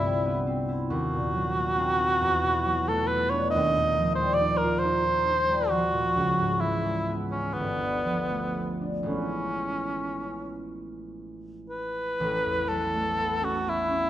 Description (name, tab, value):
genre	classical, impressionist duo for cor anglais and harp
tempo	37-47 BPM (dotted quarters)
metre	6/8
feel	rubato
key	unclear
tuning	A4 = 441 Hz
part	warm cor anglais	melody	0.0-14.1 s	B3 to D#5	-26 LUFS	equal	none
part	concert harp	accompaniment	0.0-14.1 s	G1 to E#4	-28 LUFS	equal	none
room	moderate recital hall reverb, RT60 1.5 s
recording	none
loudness	-24 LUFS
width	side -12 dB against mid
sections	0.0-12.2 A section; 12.2-14.1 A section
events	none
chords	0.0 Cmaj7; 0.9 D#m6; 2.2 E9sus4; 3.5 D#add9; 6.2 C#m7; 7.6 G9; 9.1 Amaj9; 12.2 A69